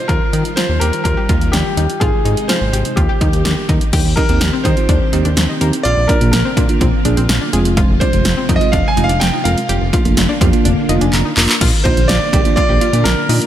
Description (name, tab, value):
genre	synth-pop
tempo	125 BPM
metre	4/4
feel	straight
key	unclear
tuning	A4 = 441 Hz
part	clear grand piano	melody	0.0-13.5 s	G4 to Ab5	-20 LUFS	right 1 dB	digital delay
part	string machine, full ensemble	sustained chords	0.0-13.5 s	C3 to G4	-23 LUFS	left 1 dB	ensemble chorus
part	analog pluck	arpeggios	0.1-13.4 s	C4 to Bb4	-24 LUFS	left 3 dB	chorus, digital delay
part	fat analog bass	bass	0.1-13.4 s	F1 to Eb3	-16 LUFS	equal	none
part	punchy analog drum machine	drums	0.1-13.5 s	crash cymbal, handclaps, hi-hat, kick drum, snare drum	-16 LUFS	equal	overdrive, gated reverb
part	bell-like tine electric piano	accompaniment	4.2-13.4 s	Ab3 to Bb5	-21 LUFS	moving between right 2 dB and right 9 dB	auto-pan
room	light reverb, digital ambience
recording	none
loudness	-12 LUFS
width	side -11 dB against mid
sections	0.0-3.9 A section; 3.9-11.6 B section; 11.6-13.5 C section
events	tine electric piano fill 10.7-11.6; drum fill 11.1-11.6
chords	0.1 Ebadd9; 2.0 Ab; 3.0 Eb; 3.9 Eb6; 5.9 Bb; 7.5 Fm; 9.7 Bb/F; 11.6 Bb